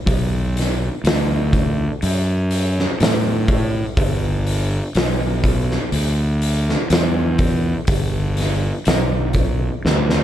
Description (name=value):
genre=stoner and doom metal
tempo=62 BPM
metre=4/4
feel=straight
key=unclear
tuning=A4 = 442 Hz
part: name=fuzz fingered electric bass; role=bass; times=0.1-10.2 s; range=G1 to A2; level=-19 LUFS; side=equal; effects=overdrive
part: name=oversized low-tuned drum kit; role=drums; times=0.1-10.2 s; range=hi-hat, kick drum, snare drum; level=-20 LUFS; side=equal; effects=none
room=little or no reverb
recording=dark, warm production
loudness=-16 LUFS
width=side -11 dB against mid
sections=0.0-10.2 A section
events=drum fill 9.8-10.2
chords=none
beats=| 0.08 1.06 2.04 3.01 | 3.99 4.96 5.94 6.92 | 7.89 8.87 9.84